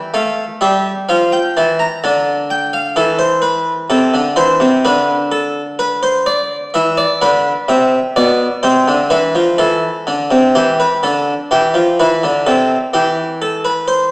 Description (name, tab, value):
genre	classical, baroque-style two-part invention for harpsichord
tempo	63 BPM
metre	4/4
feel	straight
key	D minor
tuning	A4 = 436 Hz
part	harpsichord	solo	0.1-14.1 s	B2 to Bb5	-12 LUFS	equal	none
room	wet recital hall reverb, RT60 1.5 s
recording	recorded in a church or concert hall, small speaker sound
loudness	-12 LUFS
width	side -24 dB against mid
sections	0.0-10.5 A section; 10.5-14.1 B section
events	none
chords	0.0 A5; 1.1 Dm; 3.0 Am/E; 4.8 Bm7/D; 6.7 E5; 8.6 Am/C; 10.5 Dm69; 12.4 Am/C